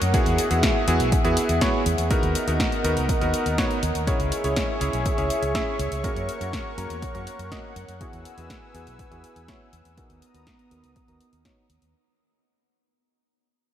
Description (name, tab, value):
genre	italo disco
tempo	122 BPM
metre	4/4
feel	straight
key	unclear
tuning	A4 = 439 Hz
part	warm analog pad	sustained chords	0.0-11.9 s	B3 to E6	-28 LUFS	equal	chorus
part	fingered electric bass with an envelope filter	bass	0.0-11.9 s	B1 to F#2	-27 LUFS	equal	none
part	house drum kit	drums	0.0-11.9 s	hi-hat, snare drum	-30 LUFS	equal	small room ambience
part	bright electric grand piano	stabs	0.1-11.6 s	A#3 to E5	-28 LUFS	right 1 dB	low-pass filter, diffuse ambient delay
part	electronic kick drum	drums	0.1-11.5 s	none	-26 LUFS	equal	small room ambience
room	wet cathedral reverb, RT60 6.0 s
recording	dreamy mix soaked in reverb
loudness	-21 LUFS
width	side -10 dB against mid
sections	0.0-11.9 A section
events	fade-out 0.0-11.9; filter sweep on electric grand piano 0.0-11.9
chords	0.1 Eadd9; 2.1 Bmaj7; 4.1 C#m; 6.0 F#; 8.0 Eadd9; 10.0 Bmaj7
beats	| 0.14 0.63 1.12 1.61 | 2.11 2.60 3.09 3.58 | 4.07 4.57 5.06 5.55 | 6.04 6.53 7.02 7.52 | 8.01 8.50 8.99 9.48 | 9.97 10.47 10.96 11.45